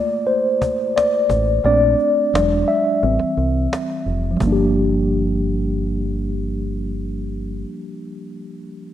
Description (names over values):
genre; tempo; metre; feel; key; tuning
lo-fi hip hop; 87 BPM; 4/4; swing 58% on 16ths; G dorian; A4 = 439 Hz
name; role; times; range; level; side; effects
mellow tine electric piano; accompaniment; 0.0-8.9 s; E3 to E5; -19 LUFS; left 1 dB; medium stereo tremolo
cajon; drums; 0.3-4.6 s; none; -27 LUFS; equal; vintage 12-bit sampler grit
deep dub fingered electric bass; bass; 1.3-7.6 s; E1 to C2; -22 LUFS; equal; none
room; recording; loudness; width
moderate lush hall reverb, RT60 2.0 s, small room ambience; rough home demo mix; -17 LUFS; side -11 dB against mid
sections
0.0-4.4 A section; 4.4-7.2 B section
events
tine electric piano solo 0.0-4.4; kick muted 1.6-4.4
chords
0.0 Gm7 (rootless); 1.6 Bbmaj9; 2.3 E7; 3.0 Am7; 4.4 Gm7